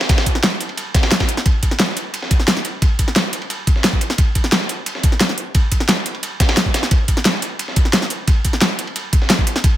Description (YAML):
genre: drum and bass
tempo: 176 BPM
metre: 4/4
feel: straight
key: none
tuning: none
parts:
  - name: dusty soul sampler-style drum kit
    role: drums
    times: 0.0-9.7 s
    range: ride cymbal, snare drum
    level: -22 LUFS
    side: right 1 dB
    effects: high-pass filter on cymbals, high-pass filter on snare, high-pass filter on room
  - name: electronic kick drum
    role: drums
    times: 0.1-9.7 s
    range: none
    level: -15 LUFS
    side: equal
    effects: none
  - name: pop drum kit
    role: drums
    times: 0.1-9.7 s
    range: hi-hat, snare drum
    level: -18 LUFS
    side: equal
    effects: none
room: little or no reverb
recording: none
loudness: -15 LUFS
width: side -13 dB against mid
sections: 0.0-9.8 A section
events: none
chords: none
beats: | 0.09 0.43 0.78 1.12 | 1.46 1.80 2.14 2.48 | 2.82 3.16 3.50 3.84 | 4.18 4.53 4.87 5.21 | 5.55 5.89 6.23 6.57 | 6.91 7.25 7.59 7.93 | 8.28 8.62 8.96 9.30 | 9.64